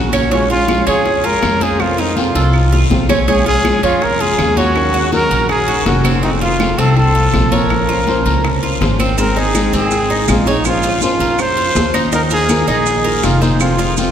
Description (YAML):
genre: latin, Cuban son and guajira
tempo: 162 BPM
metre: 4/4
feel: straight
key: Bb minor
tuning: A4 = 440 Hz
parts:
  - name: flamenco guitar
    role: accompaniment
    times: 0.0-14.1 s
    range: C3 to C5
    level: -20 LUFS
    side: left 2 dB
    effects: none
  - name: Cuban tres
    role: arpeggios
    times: 0.0-14.1 s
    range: C4 to Db5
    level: -20 LUFS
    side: right 3 dB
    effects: none
  - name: upright bass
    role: bass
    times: 0.0-14.1 s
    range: F1 to Ab2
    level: -17 LUFS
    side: equal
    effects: none
  - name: bongos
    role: percussion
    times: 0.1-14.1 s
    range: none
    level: -25 LUFS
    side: left 3 dB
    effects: none
  - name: claves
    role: percussion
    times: 0.1-13.8 s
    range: none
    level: -31 LUFS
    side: right 5 dB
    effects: none
  - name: congas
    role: percussion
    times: 0.1-14.1 s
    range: none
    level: -24 LUFS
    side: left 2 dB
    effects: none
  - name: guiro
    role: percussion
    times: 0.1-14.1 s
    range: none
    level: -27 LUFS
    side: left 4 dB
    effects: none
  - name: breathy trumpet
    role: melody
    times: 0.3-14.1 s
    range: Db4 to C5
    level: -17 LUFS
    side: equal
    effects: none
  - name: maracas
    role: percussion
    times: 9.2-14.1 s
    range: none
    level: -27 LUFS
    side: right 7 dB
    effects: none
room: wet cathedral reverb, RT60 4.8 s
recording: recorded in a church or concert hall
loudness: -12 LUFS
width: side -9 dB against mid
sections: 0.0-14.1 A section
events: drum fill 2.2-3.3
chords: 0.3 Bbm7; 1.8 F; 3.3 Bbm7; 4.8 Ebm7; 6.2 F; 7.7 Bbmadd9; 9.2 Ab; 10.7 Bbmadd9; 12.1 Ebsus2; 13.6 F